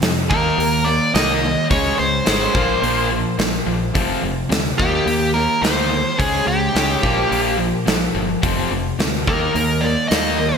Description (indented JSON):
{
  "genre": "hard rock",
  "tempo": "107 BPM",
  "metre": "4/4",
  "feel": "straight",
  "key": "unclear",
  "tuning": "A4 = 440 Hz",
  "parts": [
    { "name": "overdriven semi-hollow guitar", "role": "riff", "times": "0.0-10.6 s", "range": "F2 to Eb4", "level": "-24 LUFS", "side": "right 11 dB", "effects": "spring reverb" },
    { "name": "tight distorted guitar", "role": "riff", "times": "0.0-10.6 s", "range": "F2 to Eb4", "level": "-22 LUFS", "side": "left 9 dB", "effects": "distortion" },
    { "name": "modern bright fingered electric bass", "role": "bass", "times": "0.0-10.5 s", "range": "F1 to F2", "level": "-25 LUFS", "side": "equal", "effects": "none" },
    { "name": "big rock drum kit", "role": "drums", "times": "0.0-10.2 s", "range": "hi-hat, kick drum, snare drum", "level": "-22 LUFS", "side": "equal", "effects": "gated reverb" },
    { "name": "nasal lead guitar with a parked wah", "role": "melody", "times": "0.3-10.6 s", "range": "G4 to Eb5", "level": "-20 LUFS", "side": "equal", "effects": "overdrive, digital delay" }
  ],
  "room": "moderate lush hall reverb, RT60 1.6 s, small room ambience",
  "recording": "bright 1980s-style digital production",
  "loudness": "-16 LUFS",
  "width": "side -6 dB against mid",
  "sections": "0.0-10.6 A section",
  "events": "none",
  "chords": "0.3 Eb5; 1.7 Db5; 2.6 Bb5; 4.0 F5; 4.8 Eb; 6.2 Db5; 7.0 Bb5; 8.4 F5; 9.3 Eb5",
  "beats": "0.02 0.58 1.15 | 1.71 2.27 2.83 3.40 | 3.96 4.52 5.08 5.64 | 6.20 6.76 7.32 7.88 | 8.44 8.99 9.55 10.11"
}